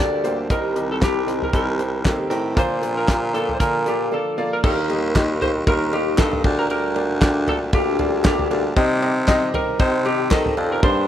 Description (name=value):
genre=piano-driven pop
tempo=116 BPM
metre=4/4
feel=swing 56% on 16ths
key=unclear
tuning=A4 = 440 Hz
part: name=lightly driven lead guitar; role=melody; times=0.0-11.1 s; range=G4 to D5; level=-24 LUFS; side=equal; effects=none
part: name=bright upright piano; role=accompaniment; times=0.0-11.1 s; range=G2 to F5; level=-25 LUFS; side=left 1 dB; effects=none
part: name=sweeping resonant pad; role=sustained chords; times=0.0-11.1 s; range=Bb2 to D5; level=-34 LUFS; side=left 1 dB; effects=chorus
part: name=picked steel-string acoustic guitar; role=riff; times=0.0-4.6 s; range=Bb2 to Bb4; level=-31 LUFS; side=right 4 dB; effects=none
part: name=raspy baritone saxophone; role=bass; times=0.0-11.1 s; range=C2 to Eb3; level=-23 LUFS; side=equal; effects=none
part: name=damped 70s drum kit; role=drums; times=0.2-11.0 s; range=crash cymbal, handclaps, hi-hat, kick drum, ride cymbal, snare drum, toms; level=-20 LUFS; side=equal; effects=none
part: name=group handclap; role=percussion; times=5.2-10.4 s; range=none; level=-39 LUFS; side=right 4 dB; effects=none
room=studio reverb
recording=rough home demo mix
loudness=-17 LUFS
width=side -10 dB against mid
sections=0.0-4.6 A section; 4.6-11.1 B section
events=break 4.1-4.6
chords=0.5 Cm; 2.6 Bb; 4.6 Eb; 6.4 Gm/D; 8.8 Cm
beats=| 0.50 1.02 1.53 2.05 | 2.57 3.09 3.60 4.12 | 4.64 5.15 5.67 6.19 | 6.70 7.22 7.74 8.25 | 8.77 9.29 9.80 10.32 | 10.83